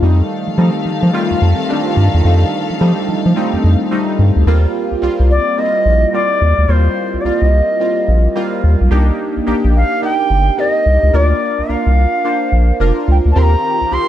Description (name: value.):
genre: R&B.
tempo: 108 BPM.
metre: 4/4.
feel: swing 62% on 16ths.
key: unclear.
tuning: A4 = 440 Hz.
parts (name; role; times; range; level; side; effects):
warm analog keys; accompaniment; 0.0-14.1 s; G3 to C5; -18 LUFS; equal; chorus, phaser.
dark studio string section; sustained chords; 0.0-4.4, 13.3-14.1 s; Eb3 to F5; -23 LUFS; left 1 dB; none.
round analog bass; bass; 0.0-14.0 s; F1 to F3; -12 LUFS; equal; none.
bright reedy bansuri; melody; 5.3-14.1 s; C5 to C6; -16 LUFS; equal; none.
room: light reverb.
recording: dark, warm production.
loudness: -12 LUFS.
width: side -12 dB against mid.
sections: 0.0-4.5 A section; 4.5-14.1 B section.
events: none.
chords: 0.0 F7; 4.5 Eb6; 8.9 Cm7; 11.1 Bb; 13.4 Eb6.